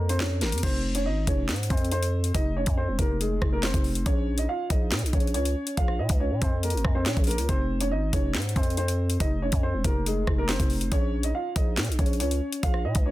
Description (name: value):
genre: hip hop, drill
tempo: 140 BPM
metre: 4/4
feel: half-time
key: F minor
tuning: A4 = 444 Hz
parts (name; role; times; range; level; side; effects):
- dark grand piano; melody; 0.0-13.1 s; Ab3 to F5; -30 LUFS; equal; tape echo
- growling 808-style bass; bass; 0.0-13.1 s; Eb1 to Bb2; -27 LUFS; equal; none
- drill drum kit; drums; 0.1-13.1 s; crash cymbal, handclaps, hi-hat, kick drum, rim click, snare drum; -26 LUFS; equal; none
room: digital ambience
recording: dense, heavily limited modern master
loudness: -23 LUFS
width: side -16 dB against mid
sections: 0.6-13.1 A section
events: none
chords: 0.0 Bbm; 0.6 F7(no3); 4.1 Bbm; 7.5 F7(no3); 10.9 Bbm